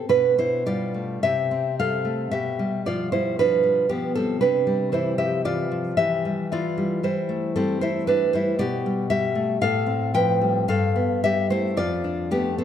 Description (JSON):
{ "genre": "romantic piece for solo classical guitar", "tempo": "52-59 BPM", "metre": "2/4", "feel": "rubato", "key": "C major", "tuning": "A4 = 440 Hz", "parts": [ { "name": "nylon-string guitar", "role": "solo", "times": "0.0-12.6 s", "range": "F2 to G5", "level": "-21 LUFS", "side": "equal", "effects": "none" } ], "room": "moderate concert hall reverb, RT60 2.2 s", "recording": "none", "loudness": "-21 LUFS", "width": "side -9 dB against mid", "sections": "0.1-12.6 A section", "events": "none", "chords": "0.1 G/B; 1.2 C; 2.3 G7/B; 4.4 C; 6.5 C/E; 8.6 G/B; 9.6 F/A; 10.7 Em/G; 11.8 Dm/F" }